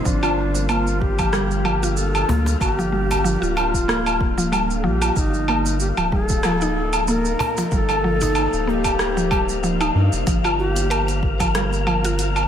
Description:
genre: organic downtempo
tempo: 94 BPM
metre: 4/4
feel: swing 55% on 16ths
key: G minor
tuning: A4 = 436 Hz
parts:
  - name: bansuri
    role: melody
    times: 0.0-12.5 s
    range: D4 to Bb4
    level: -26 LUFS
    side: left 1 dB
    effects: ping-pong delay, slapback echo
  - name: bowed-like drone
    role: sustained chords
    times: 0.3-12.5 s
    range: G3 to F5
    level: -30 LUFS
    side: right 1 dB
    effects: built-in reverb, sidechain pumping
  - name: mallet-like synth pluck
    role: arpeggios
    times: 0.0-12.5 s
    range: F3 to Bb4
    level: -25 LUFS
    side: equal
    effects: chorus, digital delay
  - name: wind-like tuned noise texture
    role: texture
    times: 0.0-12.5 s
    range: F5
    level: -33 LUFS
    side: left 4 dB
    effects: built-in reverb
  - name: round analog bass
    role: bass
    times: 0.1-12.5 s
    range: D1 to G2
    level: -24 LUFS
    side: equal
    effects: sidechain pumping
  - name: deep house drum kit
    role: drums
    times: 0.1-12.5 s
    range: hi-hat, rim click, shaker, woodblock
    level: -24 LUFS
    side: right 1 dB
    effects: none
  - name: electronic kick drum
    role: drums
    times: 0.1-11.5 s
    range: none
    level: -23 LUFS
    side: equal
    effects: none
  - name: cajon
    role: percussion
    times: 0.5-10.9 s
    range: none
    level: -34 LUFS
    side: left 2 dB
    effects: none
room: moderate lush hall reverb, RT60 2.5 s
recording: big arena sound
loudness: -18 LUFS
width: side -9 dB against mid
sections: 0.1-12.5 A section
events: none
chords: 0.1 Gm7; 5.2 F9sus4; 10.3 Gm7

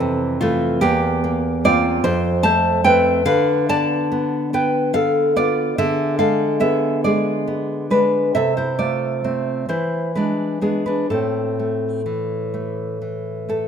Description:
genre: romantic piece for solo classical guitar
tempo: 41-50 BPM (dotted quarters)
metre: 6/8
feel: rubato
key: A minor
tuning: A4 = 441 Hz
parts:
  - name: nylon-string guitar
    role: solo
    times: 0.0-13.7 s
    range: E2 to A5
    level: -17 LUFS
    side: equal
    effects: none
room: light reverb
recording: minimal, uncompressed stereo recording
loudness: -17 LUFS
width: side -7 dB against mid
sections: 0.0-13.7 A section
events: none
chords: 0.0 Fmaj7; 0.8 C7/E; 2.0 F; 3.3 Bdim/D; 5.8 Ddim7; 8.3 Am/C; 9.7 E7; 11.1 Am

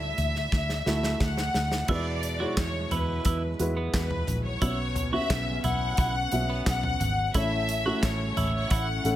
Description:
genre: piano-driven pop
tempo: 88 BPM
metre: 4/4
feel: straight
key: E mixolydian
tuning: A4 = 440 Hz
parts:
  - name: clear studio violin section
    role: melody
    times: 0.0-9.2 s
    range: B4 to F#5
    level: -31 LUFS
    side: left 2 dB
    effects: none
  - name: felt-muted upright piano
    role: accompaniment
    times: 0.0-9.2 s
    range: A2 to E5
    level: -32 LUFS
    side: right 1 dB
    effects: none
  - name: vintage muted fingered electric bass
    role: bass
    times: 0.0-9.2 s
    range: G#1 to E2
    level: -30 LUFS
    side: equal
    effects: none
  - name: modern studio drum kit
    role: drums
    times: 0.2-9.2 s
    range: crash cymbal, handclaps, hi-hat, kick drum, snare drum, toms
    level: -30 LUFS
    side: equal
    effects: none
  - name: chorused pulse-width pad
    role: sustained chords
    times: 2.5-9.2 s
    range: F#3 to E4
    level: -39 LUFS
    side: equal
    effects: none
  - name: twelve-string electric guitar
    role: riff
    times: 1.9-8.9 s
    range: B3 to F#4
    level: -34 LUFS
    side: right 4 dB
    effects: none
room: light reverb, small room reverb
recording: none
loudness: -25 LUFS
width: side -13 dB against mid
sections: 0.0-1.9 A section; 1.9-9.2 B section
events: drum fill 0.5-1.9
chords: 0.0 Dadd9; 1.9 Eadd9; 4.6 Bsus2; 7.3 A

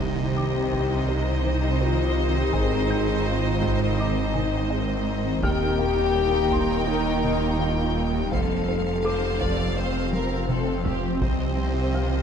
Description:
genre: cinematic, hybrid orchestral and electronic film score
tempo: 83 BPM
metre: 4/4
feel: straight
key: C minor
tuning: A4 = 442 Hz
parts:
  - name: warm symphonic violin section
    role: melody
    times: 0.0-12.2 s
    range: Eb5 to G5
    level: -34 LUFS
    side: left 1 dB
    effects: none
  - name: rich symphonic violin section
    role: second line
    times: 0.0-12.2 s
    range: G4 to D5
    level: -34 LUFS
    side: left 2 dB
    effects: none
  - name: warm symphonic viola section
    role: accompaniment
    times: 0.0-12.2 s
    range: C4 to Eb4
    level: -34 LUFS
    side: right 1 dB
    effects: none
  - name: bright trombone section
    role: sustained chords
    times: 0.0-12.2 s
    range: C3 to C4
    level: -34 LUFS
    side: right 4 dB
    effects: none
  - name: granular cloud pad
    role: sustained chords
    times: 0.0-12.2 s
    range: Eb3 to Eb5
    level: -32 LUFS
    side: left 1 dB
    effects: built-in reverb
  - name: mellow French horn section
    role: sustained chords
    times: 0.0-12.2 s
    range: C4 to A4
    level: -28 LUFS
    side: left 8 dB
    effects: none
  - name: resonant blip pluck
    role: arpeggios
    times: 0.0-12.1 s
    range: C3 to Ab4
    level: -37 LUFS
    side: right 2 dB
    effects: none
  - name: dark symphonic cello section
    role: bass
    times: 0.0-12.2 s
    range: Eb2 to C3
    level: -30 LUFS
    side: right 3 dB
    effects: none
  - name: phased detuned saw bass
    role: bass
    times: 0.0-12.2 s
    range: Eb1 to C2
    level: -30 LUFS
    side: equal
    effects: phaser
  - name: rich symphonic double bass section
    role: bass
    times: 0.0-12.2 s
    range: F1 to Eb2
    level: -31 LUFS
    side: right 4 dB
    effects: none
  - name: impact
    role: sound effects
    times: 0.0-2.5 s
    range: none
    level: -39 LUFS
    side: equal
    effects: none
  - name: dark grand piano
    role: texture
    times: 0.4-12.2 s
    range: Eb5 to G6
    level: -39 LUFS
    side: left 2 dB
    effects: ping-pong delay
  - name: taiko ensemble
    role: drums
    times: 0.7-11.9 s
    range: none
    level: -31 LUFS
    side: equal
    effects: none
room: light reverb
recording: close, detailed microphones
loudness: -21 LUFS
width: side -7 dB against mid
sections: 0.0-12.2 A section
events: impact 0.0-2.5; drum fill 10.1-11.2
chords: 0.0 Cm; 2.5 Ab; 5.4 Eb; 8.3 F; 11.2 Cm

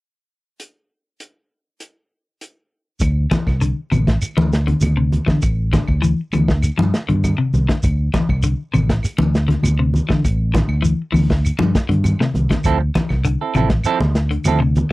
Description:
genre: afrobeat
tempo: 100 BPM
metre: 4/4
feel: straight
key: D minor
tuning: A4 = 440 Hz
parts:
  - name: crunchy breakbeat drum kit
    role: drums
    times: 0.6-14.9 s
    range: hi-hat, kick drum, snare drum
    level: -20 LUFS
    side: equal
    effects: none
  - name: fingered electric bass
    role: bass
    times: 3.0-14.8 s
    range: A1 to D3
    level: -18 LUFS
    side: equal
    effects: none
  - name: claves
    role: percussion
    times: 3.0-14.6 s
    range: none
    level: -35 LUFS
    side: right 1 dB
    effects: none
  - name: shekere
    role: percussion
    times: 3.0-14.9 s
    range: none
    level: -23 LUFS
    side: right 1 dB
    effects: none
  - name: clean electric guitar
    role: arpeggios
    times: 3.3-14.8 s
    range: C3 to F3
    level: -21 LUFS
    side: left 3 dB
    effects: none
  - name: congas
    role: percussion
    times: 3.3-14.9 s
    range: none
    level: -22 LUFS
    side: right 1 dB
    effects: none
  - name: semi-hollow electric guitar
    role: stabs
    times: 12.7-14.8 s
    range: F3 to A4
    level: -19 LUFS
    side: right 7 dB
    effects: none
room: little or no reverb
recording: dry, close 1970s-style studio recording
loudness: -15 LUFS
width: side -20 dB against mid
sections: 0.6-3.0 A section; 3.0-14.9 B section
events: none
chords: 0.6 N.C.; 3.0 D7sus2

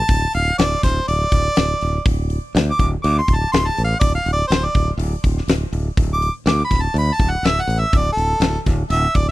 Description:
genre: blues rock power trio and southern rock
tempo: 122 BPM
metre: 4/4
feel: straight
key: unclear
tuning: A4 = 443 Hz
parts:
  - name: clear harmonica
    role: melody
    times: 0.0-9.3 s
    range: A4 to D6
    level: -21 LUFS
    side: right 1 dB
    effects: overdrive, tape echo
  - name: modern bright fingered electric bass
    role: bass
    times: 0.1-9.3 s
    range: D1 to D2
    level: -20 LUFS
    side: equal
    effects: none
  - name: big rock drum kit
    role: drums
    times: 0.1-9.3 s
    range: hi-hat, kick drum, snare drum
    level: -20 LUFS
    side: equal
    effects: none
room: little or no reverb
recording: dry, close 1970s-style studio recording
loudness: -16 LUFS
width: side -17 dB against mid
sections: 0.0-9.3 A section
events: harmonica solo 0.0-9.3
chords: 0.0 D5

